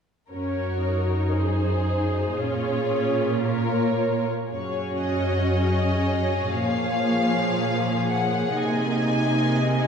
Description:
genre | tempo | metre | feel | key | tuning
cinematic | 58 BPM | 4/4 | rubato | unclear | A4 = 440 Hz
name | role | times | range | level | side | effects
rich symphonic violin section | second line | 0.3-9.9 s | F4 to Eb5 | -28 LUFS | equal | none
rich studio viola section | accompaniment | 0.3-9.9 s | F3 to Ab4 | -26 LUFS | equal | none
rich symphonic cello section | bass | 0.3-9.9 s | Gb2 to C3 | -26 LUFS | right 1 dB | none
rich symphonic violin section | melody | 4.5-9.9 s | Db5 to Ab5 | -28 LUFS | left 4 dB | none
room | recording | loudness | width
wet scoring stage reverb, RT60 1.7 s | heard from further back in the room | -21 LUFS | side -7 dB against mid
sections
0.3-4.5 A section; 4.5-9.9 B section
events
none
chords
0.3 Gbsus2; 2.4 Bbm7; 4.5 Gbsus2; 6.6 Bbm7; 8.6 Abadd9/C

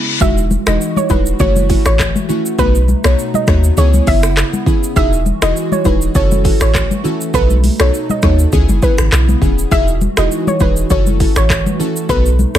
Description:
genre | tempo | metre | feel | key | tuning
afrobeats | 101 BPM | 4/4 | swing 55% on 16ths | E major | A4 = 440 Hz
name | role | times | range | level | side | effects
hollow soft pad | sustained chords | 0.0-12.6 s | B2 to F#4 | -24 LUFS | equal | chorus
soft round pluck | melody | 0.2-12.6 s | B4 to E5 | -19 LUFS | right 1 dB | chorus
glassy digital keys | accompaniment | 0.2-12.6 s | G#3 to A4 | -20 LUFS | equal | chorus
punchy sub bass | bass | 0.2-12.6 s | D#1 to D#2 | -14 LUFS | equal | none
afro-pop drum kit | drums | 0.2-12.6 s | finger snaps, handclaps, hi-hat, kick drum, rim click, shaker | -16 LUFS | equal | overdrive
congas | percussion | 0.5-12.5 s | none | -20 LUFS | left 3 dB | none
room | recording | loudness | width
little or no reverb | none | -11 LUFS | side -11 dB against mid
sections
0.2-12.6 A section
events
break 0.0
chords
0.2 Emaj9; 1.4 F#m7; 2.6 B7; 3.8 C#m7; 5.0 Emaj9; 6.2 F#m7; 7.3 B7; 8.5 C#m7; 9.7 Emaj9; 10.9 F#m7

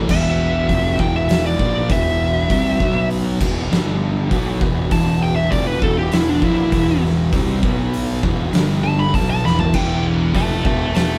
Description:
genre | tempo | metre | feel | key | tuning
stoner and doom metal | 99 BPM | 4/4 | straight | E minor | A4 = 440 Hz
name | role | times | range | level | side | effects
tonewheel organ | sustained chords | 0.0-11.2 s | E3 to B4 | -33 LUFS | equal | none
thick fuzz guitar | riff | 0.0-11.2 s | E2 to C4 | -27 LUFS | equal | none
thick fuzz guitar | riff | 0.0-11.2 s | E2 to C4 | -27 LUFS | equal | distortion
thick fuzz guitar | riff | 0.0-0.1, 9.7-11.2 s | E2 to F3 | -30 LUFS | equal | none
fuzz picked electric bass | bass | 0.0-11.2 s | E1 to C2 | -24 LUFS | equal | overdrive
fuzz lead guitar | melody | 0.1-11.2 s | D4 to B5 | -23 LUFS | equal | distortion
oversized low-tuned drum kit | drums | 0.1-11.1 s | crash cymbal, hi-hat, kick drum, snare drum, toms | -23 LUFS | equal | none
room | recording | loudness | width
moderate studio reverb, RT60 0.5 s | band playing live in one room | -18 LUFS | mono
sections
0.1-11.2 A section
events
lead electric guitar solo 0.1-11.2; drum fill 9.4-9.8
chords
0.1 Em; 2.8 B5; 3.4 E5; 3.7 G5; 4.3 Em; 7.6 B5; 8.2 E5; 8.5 G5; 9.1 E5

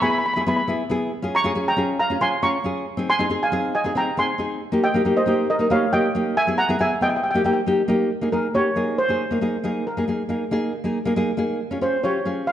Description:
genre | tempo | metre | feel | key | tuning
calypso | 137 BPM | 4/4 | straight | Ab major | A4 = 440 Hz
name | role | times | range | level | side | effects
steel pan | melody | 0.0-12.5 s | Bb4 to Db6 | -22 LUFS | right 1 dB | none
nylon-string guitar | accompaniment | 0.0-12.5 s | Bb3 to Bb4 | -22 LUFS | left 1 dB | none
room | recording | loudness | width
wet recital hall reverb, RT60 1.7 s | dark, warm production | -19 LUFS | side -11 dB against mid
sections
0.0-8.1 A section; 8.1-12.5 B section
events
steel pan solo 8.1-12.5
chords
0.0 E; 1.1 Db6; 2.9 Ab; 4.6 Eb; 6.4 E; 7.2 Eb; 8.1 Absus2; 11.6 Db

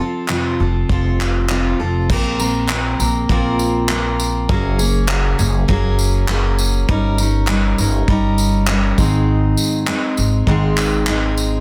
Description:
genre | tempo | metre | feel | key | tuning
acoustic pop | 100 BPM | 4/4 | straight | Bb minor | A4 = 440 Hz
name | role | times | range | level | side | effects
picked steel-string acoustic guitar | accompaniment | 0.0-11.6 s | F2 to Bb4 | -21 LUFS | equal | none
unplugged drum kit | drums | 0.3-11.5 s | crash cymbal, handclaps, kick drum, tambourine | -24 LUFS | equal | soft clipping on kick
group handclap | percussion | 0.3-11.2 s | none | barely audible | none | none
upright bass | bass | 0.6-11.6 s | F1 to Bb1 | -21 LUFS | equal | none
room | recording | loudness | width
light reverb | dense, heavily limited modern master | -17 LUFS | mono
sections
0.0-2.1 A section; 2.1-11.6 B section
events
none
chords
0.0 F; 2.1 Bbsus2; 4.5 Gbadd9; 6.9 Eb7/G; 9.0 Ab

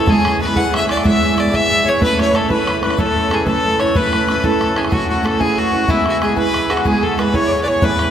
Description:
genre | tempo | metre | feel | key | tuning
celtic folk, Celtic slide | 124 BPM (dotted quarters) | 12/8 | straight | unclear | A4 = 440 Hz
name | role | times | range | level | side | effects
bright fiddle | melody | 0.0-8.1 s | E4 to F#5 | -18 LUFS | left 1 dB | none
accordion | second line | 0.0-8.1 s | E4 to F#5 | -20 LUFS | left 3 dB | none
picked steel-string acoustic guitar | accompaniment | 0.0-8.1 s | A2 to B4 | -18 LUFS | right 3 dB | none
bodhran | percussion | 0.1-8.1 s | none | -21 LUFS | equal | none
room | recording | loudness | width
wet cathedral reverb, RT60 6.2 s | recorded in a church or concert hall | -13 LUFS | side -9 dB against mid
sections
0.0-8.1 A section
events
none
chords
0.1 E/G#; 2.0 Aadd9; 5.9 E/G#

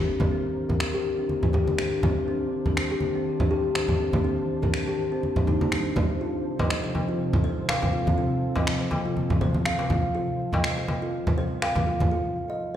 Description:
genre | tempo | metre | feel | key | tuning
afro house | 122 BPM | 4/4 | swing 56% on 16ths | C dorian | A4 = 440 Hz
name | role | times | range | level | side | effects
ethereal airy pad | sustained chords | 0.0-12.1 s | C3 to A5 | -30 LUFS | equal | ensemble chorus, built-in reverb
kalimba | arpeggios | 0.1-12.8 s | G3 to F5 | -28 LUFS | left 1 dB | low-pass filter, digital delay
congas | percussion | 0.2-12.1 s | none | -26 LUFS | right 1 dB | none
electronic finger snaps | drums | 0.8-11.7 s | none | -31 LUFS | equal | overdrive
darbuka | percussion | 6.6-11.8 s | none | -35 LUFS | left 2 dB | none
room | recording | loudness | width
moderate plate reverb, RT60 1.6 s | played on a big sound system in a bare room, stone room reverb | -23 LUFS | side -10 dB against mid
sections
0.0-12.8 A section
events
filter sweep on kalimba 0.0-12.8; break 12.1-12.8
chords
0.0 Cm9; 6.2 F/C

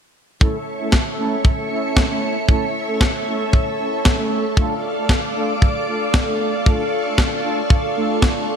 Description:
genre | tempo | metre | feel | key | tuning
italo disco | 115 BPM | 4/4 | straight | unclear | A4 = 438 Hz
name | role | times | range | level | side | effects
string machine, full ensemble | sustained chords | 0.4-8.6 s | A4 to D6 | -22 LUFS | left 1 dB | ensemble chorus
analog synth brass | stabs | 0.4-8.5 s | A3 to A4 | -24 LUFS | right 2 dB | chorus, ping-pong delay
kick drum | drums | 0.4-8.3 s | none | -16 LUFS | equal | none
electronic snare drum | drums | 0.9-8.3 s | none | -23 LUFS | left 1 dB | none
room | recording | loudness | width
moderate lush hall reverb, RT60 1.6 s, small room ambience | bright 1980s-style digital production | -17 LUFS | side -7 dB against mid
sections
0.4-8.6 A section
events
filter sweep on analog polysynth 0.4-8.6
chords
0.4 A; 4.6 Dm

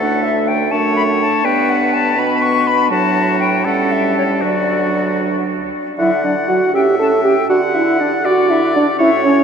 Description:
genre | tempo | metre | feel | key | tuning
quick classical-period movement for wind quintet | 76-83 BPM (dotted quarters) | 6/8 | rubato | D major | A4 = 441 Hz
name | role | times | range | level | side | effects
silver concert flute | melody | 0.0-9.4 s | C#5 to C#6 | -19 LUFS | left 6 dB | none
clear oboe | second line | 0.0-9.4 s | F#4 to F#5 | -20 LUFS | left 2 dB | none
mellow clarinet | accompaniment | 0.0-9.3 s | F#3 to D4 | -22 LUFS | right 7 dB | none
warm French horn | accompaniment | 0.0-9.4 s | F#3 to A4 | -17 LUFS | right 1 dB | none
mellow bassoon | bass | 0.0-9.4 s | D2 to D3 | -24 LUFS | right 5 dB | none
room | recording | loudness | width
wet huge ambient reverb, RT60 8.2 s | in a vast, echoing space | -13 LUFS | side -6 dB against mid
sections
0.0-6.0 A section; 6.0-9.4 B section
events
none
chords
0.0 D5; 0.7 D/F#; 1.4 G; 2.9 D/A; 3.7 A7; 4.4 D; 6.7 A; 7.5 D

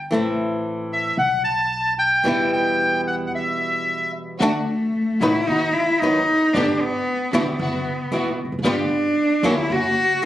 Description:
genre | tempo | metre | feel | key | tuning
tango | 113 BPM | 4/4 | rubato | E minor | A4 = 445 Hz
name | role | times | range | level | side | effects
upright bass | bass | 0.0-10.3 s | E1 to E2 | -31 LUFS | right 1 dB | none
flamenco guitar | accompaniment | 0.1-10.3 s | B2 to B4 | -22 LUFS | left 1 dB | none
bandoneon | melody | 0.9-4.1 s | E5 to A5 | -20 LUFS | equal | none
clear cello | second line | 4.4-10.2 s | A3 to F#4 | -20 LUFS | equal | none
rich studio string section | stabs | 4.4-10.3 s | A3 to G4 | -27 LUFS | equal | none
room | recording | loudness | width
moderate studio reverb, RT60 0.8 s | recorded on a phone in the room, club reverb, compression | -18 LUFS | side -13 dB against mid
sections
0.0-4.4 A section; 4.4-10.3 B section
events
break 3.3-4.4; cello solo 4.4-10.3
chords
0.1 Am; 1.2 Gmaj9/B; 2.2 Em; 4.4 D; 5.5 B/D#; 6.5 G; 7.6 Bsus4/F#; 8.6 G7; 9.7 F#

